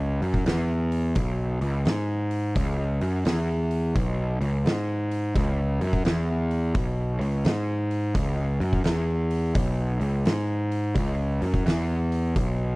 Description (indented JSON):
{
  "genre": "stoner and doom metal",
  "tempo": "86 BPM",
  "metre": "4/4",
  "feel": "swing 65% on 8ths",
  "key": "C# minor",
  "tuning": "A4 = 441 Hz",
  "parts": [
    { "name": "fuzz picked electric bass", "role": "bass", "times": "0.0-12.8 s", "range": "B1 to G#2", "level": "-24 LUFS", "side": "equal", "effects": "overdrive" },
    { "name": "oversized low-tuned drum kit", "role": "drums", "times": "0.2-12.6 s", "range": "hi-hat, kick drum, snare drum", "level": "-27 LUFS", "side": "equal", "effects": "none" }
  ],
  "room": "little or no reverb",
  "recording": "dry, close 1970s-style studio recording",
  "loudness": "-23 LUFS",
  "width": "side -25 dB against mid",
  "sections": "0.0-12.8 A section",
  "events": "none",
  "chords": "none",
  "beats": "0.46 1.16 1.86 | 2.56 3.26 3.96 4.65 | 5.35 6.05 6.75 7.45 | 8.15 8.86 9.56 10.26 | 10.96 11.66 12.36"
}